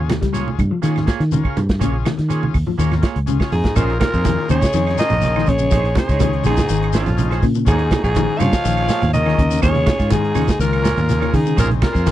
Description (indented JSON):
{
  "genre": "afrobeat",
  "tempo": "123 BPM",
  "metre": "4/4",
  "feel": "straight",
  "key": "Bb minor",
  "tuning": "A4 = 439 Hz",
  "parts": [
    { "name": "combo organ", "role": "accompaniment", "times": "0.0-12.1 s", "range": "C4 to C5", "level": "-30 LUFS", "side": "left 13 dB", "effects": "none" },
    { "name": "electric guitar at the edge of break-up", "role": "arpeggios", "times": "0.0-12.1 s", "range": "Db3 to G3", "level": "-24 LUFS", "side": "left 8 dB", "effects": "analog chorus" },
    { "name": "fingered electric bass", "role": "bass", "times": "0.0-12.1 s", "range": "Ab1 to Eb3", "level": "-19 LUFS", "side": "equal", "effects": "none" },
    { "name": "vintage drum kit", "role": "drums", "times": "0.1-12.1 s", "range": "hi-hat, kick drum, snare drum", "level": "-20 LUFS", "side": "equal", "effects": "none" },
    { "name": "claves", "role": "percussion", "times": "0.1-11.9 s", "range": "none", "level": "-34 LUFS", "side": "right 29 dB", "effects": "none" },
    { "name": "congas", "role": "percussion", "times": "0.1-12.1 s", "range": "none", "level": "-24 LUFS", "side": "right 4 dB", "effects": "none" },
    { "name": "shekere", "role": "percussion", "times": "0.1-12.1 s", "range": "none", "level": "-29 LUFS", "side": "left 7 dB", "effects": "none" },
    { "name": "clean electric guitar", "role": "stabs", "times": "0.3-12.1 s", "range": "Bb3 to Db5", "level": "-26 LUFS", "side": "right 10 dB", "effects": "lush chorus" },
    { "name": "raspy alto saxophone", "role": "melody", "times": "3.5-12.1 s", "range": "F4 to F5", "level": "-21 LUFS", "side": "equal", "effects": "none" },
    { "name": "raspy baritone saxophone", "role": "second line", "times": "3.5-12.1 s", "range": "F2 to F3", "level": "-28 LUFS", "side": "left 7 dB", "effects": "none" },
    { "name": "warm trumpet", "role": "second line", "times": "3.5-12.1 s", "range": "Db4 to Db5", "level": "-30 LUFS", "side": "right 5 dB", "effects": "none" }
  ],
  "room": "little or no reverb",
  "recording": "dry, close 1970s-style studio recording",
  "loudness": "-15 LUFS",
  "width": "side -13 dB against mid",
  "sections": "0.0-3.8 A section; 3.8-12.1 B section",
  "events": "drum fill 3.3-3.8",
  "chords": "0.0 Eb9sus4; 3.8 Bbm11; 7.7 Eb9sus4; 11.6 Bbm11"
}